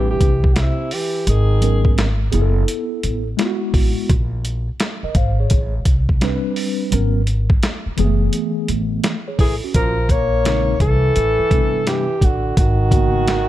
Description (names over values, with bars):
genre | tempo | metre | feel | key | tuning
hip hop, jazz-hop | 85 BPM | 4/4 | swing 65% on 16ths | unclear | A4 = 440 Hz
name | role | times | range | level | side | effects
breathy alto saxophone | melody | 0.0-1.9, 9.4-13.5 s | E4 to Db5 | -20 LUFS | left 1 dB | none
breathy trombone | second line | 0.0-1.9, 9.4-13.5 s | C3 to Bb3 | -26 LUFS | right 4 dB | none
mellow tine electric piano | accompaniment | 0.0-13.4 s | B2 to F5 | -22 LUFS | equal | medium stereo tremolo
upright bass | bass | 0.0-13.5 s | Gb1 to C2 | -19 LUFS | equal | none
boom bap sampler-style drum kit | drums | 0.2-13.5 s | hi-hat, kick drum, snare drum | -19 LUFS | equal | none
room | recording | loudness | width
little or no reverb | dark, warm production | -15 LUFS | side -14 dB against mid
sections
0.0-9.7 A section; 9.7-13.5 B section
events
none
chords
0.0 Am11 (rootless); 1.3 Abm11; 2.3 Gbm11; 4.1 Ab69; 5.5 Am11; 6.9 Abm11; 8.0 Gbm11; 9.7 Bbm11; 11.2 Am11; 12.6 Abm11